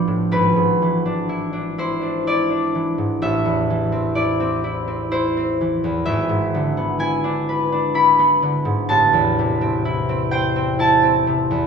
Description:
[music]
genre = classical, solo harp piece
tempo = 63 BPM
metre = 3/4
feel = rubato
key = A minor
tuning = A4 = 440 Hz
[part]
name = concert harp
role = solo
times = 0.0-11.7 s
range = G#1 to B5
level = -17 LUFS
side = equal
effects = none
[sound]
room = wet recital hall reverb, RT60 1.5 s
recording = recorded in a church or concert hall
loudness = -17 LUFS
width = side -6 dB against mid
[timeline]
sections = 0.0-11.7 A section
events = none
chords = 0.3 E7/G#; 3.2 Am; 6.1 E7/G#; 8.9 Am

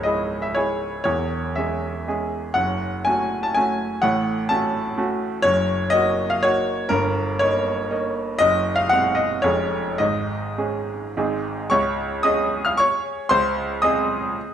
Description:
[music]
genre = classical, romantic triple-time dance for piano with dotted rhythms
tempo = 101-134 BPM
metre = 3/4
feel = rubato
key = Db major from 5.4 s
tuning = A4 = 440 Hz
[part]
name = clear baby grand piano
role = solo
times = 0.0-14.5 s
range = C#1 to F6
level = -19 LUFS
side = equal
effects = none
[sound]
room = moderate recital hall reverb, RT60 1.4 s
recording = none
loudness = -19 LUFS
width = side -9 dB against mid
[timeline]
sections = 0.0-11.7 A section; 11.7-14.5 B section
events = none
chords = 0.0 C#m; 1.0 C#m/E; 2.5 F#m; 4.0 F#m/A; 5.4 Ebm7/Gb; 6.9 Eb7/G; 8.4 Ab7/Gb; 9.4 Db/F; 10.0 Absus4; 11.2 Ab; 11.7 Db; 13.3 Ab/Db

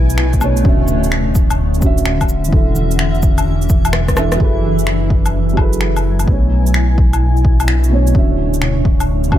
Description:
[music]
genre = future garage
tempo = 128 BPM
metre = 4/4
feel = swing 66% on 16ths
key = F# minor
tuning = A4 = 440 Hz
[part]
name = felt-muted upright piano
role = accompaniment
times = 0.0-9.4 s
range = B2 to E5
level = -21 LUFS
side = right 2 dB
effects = sidechain pumping, ping-pong delay
[part]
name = granular cloud pad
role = sustained chords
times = 0.0-9.4 s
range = B2 to G#5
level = -20 LUFS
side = left 1 dB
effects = built-in reverb, sidechain pumping
[part]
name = dark detuned saw bass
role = bass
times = 0.0-9.4 s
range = D1 to B1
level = -16 LUFS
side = equal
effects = sidechain pumping
[part]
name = electronic shaker, finger snaps, cabasa, woodblock and rim click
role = drums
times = 0.1-9.4 s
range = none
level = -22 LUFS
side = left 2 dB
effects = none
[part]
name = electronic kick drum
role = drums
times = 0.3-9.4 s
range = none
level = -14 LUFS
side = equal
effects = none
[sound]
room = light reverb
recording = none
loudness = -12 LUFS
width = side -12 dB against mid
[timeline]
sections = 0.0-4.4 A section; 4.4-9.4 B section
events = drum fill 3.9-4.4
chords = 0.0 Bm9; 0.7 Dmaj9; 2.5 E7sus4; 4.4 F#m11; 6.3 Bm9; 8.2 Dmaj9

